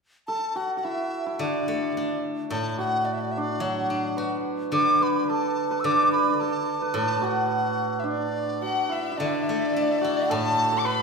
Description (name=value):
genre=chinese traditional, Chinese chamber ensemble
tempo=108 BPM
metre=2/4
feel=rubato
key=D gong mode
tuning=A4 = 445 Hz
part: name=mellow hollow large dizi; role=melody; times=0.3-11.0 s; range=D5 to E6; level=-27 LUFS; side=left 1 dB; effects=none
part: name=hammered dulcimer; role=second line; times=0.3-11.0 s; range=D4 to D5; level=-27 LUFS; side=right 4 dB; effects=none
part: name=steel-string zither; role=accompaniment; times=1.4-11.0 s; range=A2 to F#4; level=-28 LUFS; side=left 2 dB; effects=none
part: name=warm erhu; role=second line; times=8.6-11.0 s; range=D5 to D6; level=-28 LUFS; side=left 4 dB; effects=none
room=wet recital hall reverb, RT60 1.7 s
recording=recorded in a church or concert hall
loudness=-23 LUFS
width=side -4 dB against mid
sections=0.3-9.2 A section; 9.2-11.0 B section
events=none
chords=none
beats=| 0.27 0.84 | 1.41 1.96 | 2.52 3.06 | 3.62 4.18 | 4.74 5.31 | 5.86 6.41 | 6.96 7.51 | 8.06 8.63 | 9.20 9.75 | 10.30 10.85